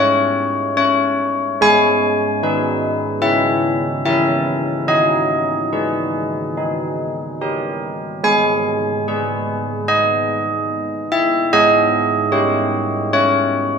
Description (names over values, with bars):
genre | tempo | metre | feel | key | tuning
classical, tune for church bells | 73 BPM | 4/4 | straight | G# minor | A4 = 443 Hz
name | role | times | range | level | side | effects
carillon bells | solo | 0.0-13.8 s | G#3 to G#5 | -15 LUFS | equal | none
room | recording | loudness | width
moderate recital hall reverb, RT60 1.4 s | dark, warm production | -15 LUFS | side -6 dB against mid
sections
0.0-13.8 A section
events
none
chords
0.0 D#7 (rootless); 1.6 G#m; 3.2 A#dim/C#; 4.9 G#m/D#; 6.6 D#; 8.2 G#m; 11.5 D#7/G#